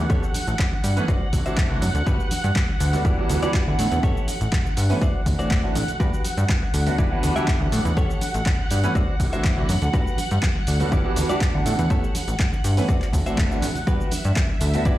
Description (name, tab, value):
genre	filtered disco house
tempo	122 BPM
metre	4/4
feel	straight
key	G major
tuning	A4 = 440 Hz
part	clear concert grand piano	accompaniment	0.0-14.9 s	E3 to F#5	-27 LUFS	right 2 dB	phaser, sidechain pumping, low-pass filter
part	string machine, full ensemble	sustained chords	0.0-15.0 s	E5 to F#5	-31 LUFS	equal	ensemble chorus, sidechain pumping, low-pass filter
part	plucky analog bass	bass	0.0-14.9 s	D1 to A2	-22 LUFS	equal	sidechain pumping, low-pass filter
part	direct-recorded clean electric guitar	riff	0.1-15.0 s	E4 to E5	-32 LUFS	left 2 dB	vintage 12-bit sampler grit, sidechain pumping, low-pass filter
part	electronic kick drum	drums	0.1-15.0 s	none	-22 LUFS	equal	none
part	punchy analog drum machine	drums	0.1-15.0 s	handclaps, hi-hat, shaker	-31 LUFS	equal	sidechain pumping on hats, sidechain pumping on perc
part	tambourine and congas	percussion	0.1-15.0 s	none	-34 LUFS	right 2 dB	sidechain pumping on perc, low-pass filter on perc
room	little or no reverb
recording	played on a big sound system in a bare room, stone room reverb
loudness	-19 LUFS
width	side -14 dB against mid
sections	0.0-15.0 A section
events	none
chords	0.1 A7; 1.1 D7; 2.1 Gmaj7; 3.1 Em7; 4.0 A7; 5.0 D7; 6.0 Gmaj7; 7.0 Em7; 8.0 A7; 9.0 D7; 9.9 Gmaj7; 10.9 Em7; 11.9 A7; 12.9 D7; 13.9 Gmaj7